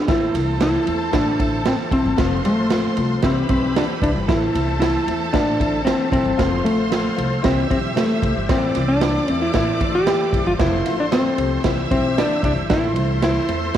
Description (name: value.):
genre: uptempo 1960s-style soul.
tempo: 114 BPM.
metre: 4/4.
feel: straight.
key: A minor.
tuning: A4 = 445 Hz.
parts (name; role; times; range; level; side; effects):
hollow-body jazz guitar; melody; 0.0-13.8 s; A3 to G4; -20 LUFS; equal; none.
overdriven tonewheel organ; sustained chords; 0.0-13.8 s; C4 to F5; -31 LUFS; equal; chorus vibrato, slow rotary speaker.
rich studio violin section; second line; 0.1-13.8 s; A4 to E6; -29 LUFS; equal; none.
dark upright piano; accompaniment; 0.1-13.8 s; E3 to G4; -27 LUFS; left 8 dB; none.
upright bass; bass; 0.1-13.8 s; F1 to A2; -25 LUFS; equal; none.
swinging big-band drum kit; drums; 0.1-13.8 s; kick drum, ride cymbal, snare drum; -23 LUFS; right 3 dB; none.
room: moderate echo chamber reverb, RT60 1.7 s, studio ambience.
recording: 1960s-style stereo, vinyl crackle.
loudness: -17 LUFS.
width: side -10 dB against mid.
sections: 0.1-13.8 A section.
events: none.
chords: 0.1 Am; 2.2 F; 3.2 C; 4.3 Am; 6.4 F; 7.4 C; 8.5 Am; 10.6 F; 11.6 C; 12.7 Am.